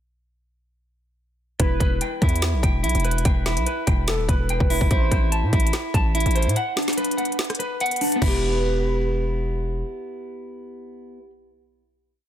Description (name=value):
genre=hip hop, trap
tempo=145 BPM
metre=4/4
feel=half-time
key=E minor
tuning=A4 = 440 Hz
part: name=warm velvety synth lead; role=second line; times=1.6-5.3, 8.2-9.4 s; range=A4 to C5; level=-31 LUFS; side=equal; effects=chorus, digital delay
part: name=semi-hollow electric guitar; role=arpeggios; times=1.6-11.3 s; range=B3 to A5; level=-25 LUFS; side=equal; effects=spring reverb, low-pass filter, digital delay
part: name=distorted 808-style bass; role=bass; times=1.6-9.8 s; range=D1 to A2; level=-23 LUFS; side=equal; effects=distortion
part: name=trap drum kit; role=drums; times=1.6-8.3 s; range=crash cymbal, hi-hat, kick drum, rim click, snare drum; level=-23 LUFS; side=equal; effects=none
room=little or no reverb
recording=dense, heavily limited modern master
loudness=-19 LUFS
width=side -10 dB against mid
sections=1.6-8.2 hook; 8.2-11.5 final chord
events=break 6.6-8.2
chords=1.6 Em; 4.9 Am; 6.6 Bm; 8.2 Em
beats=| 1.60 2.01 2.42 2.84 | 3.25 3.67 4.08 4.49 | 4.91 5.32 5.74 6.15 | 6.56 6.98 7.39 7.80 | 8.22 8.63 9.05 9.46 | 9.87 10.29 10.70 11.12